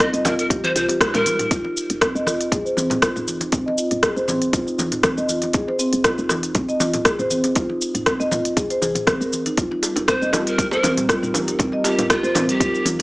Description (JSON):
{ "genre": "afro house", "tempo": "119 BPM", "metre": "4/4", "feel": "swing 54% on 16ths", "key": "F minor", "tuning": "A4 = 436 Hz", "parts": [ { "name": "breathy pan flute", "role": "melody", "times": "0.0-1.5, 10.1-12.9 s", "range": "F4 to C5", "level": "-24 LUFS", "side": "equal", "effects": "dub echo" }, { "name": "dark analog pad", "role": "sustained chords", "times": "0.0-1.5, 9.6-13.0 s", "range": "G3 to Bb4", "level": "-30 LUFS", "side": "equal", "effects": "chorus, sidechain pumping" }, { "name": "marimba with soft mallets", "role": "arpeggios", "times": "0.0-13.0 s", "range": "C4 to Eb5", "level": "-22 LUFS", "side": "equal", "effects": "sidechain pumping, low-pass filter, dub echo" }, { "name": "woody FM bass", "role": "bass", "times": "0.0-13.0 s", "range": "Eb1 to C2", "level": "-30 LUFS", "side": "equal", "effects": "sidechain pumping" }, { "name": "afro-pop drum kit", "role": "drums", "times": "0.0-13.0 s", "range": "cabasa, hi-hat, rim click, toms", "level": "-21 LUFS", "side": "equal", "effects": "studio ambience" }, { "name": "electronic kick drum", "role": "drums", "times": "0.0-12.7 s", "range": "none", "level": "-23 LUFS", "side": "equal", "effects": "studio ambience" }, { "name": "bongos", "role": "percussion", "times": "0.2-1.2, 9.8-12.5 s", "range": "none", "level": "-26 LUFS", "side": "right 1 dB", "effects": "none" }, { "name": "congas", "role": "percussion", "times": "0.3-13.0 s", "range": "none", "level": "-29 LUFS", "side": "left 1 dB", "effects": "none" } ], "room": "light reverb, small room ambience", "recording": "small speaker sound", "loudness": "-18 LUFS", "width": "side -22 dB against mid", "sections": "0.0-1.5 A section; 1.5-13.0 B section", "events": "drop 0.0-1.5; drum fill 1.0-1.5; band accent 1.0; filter sweep on marimba 1.5-13.0", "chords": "0.0 Eb69; 1.5 F7(no3); 9.6 Eb69" }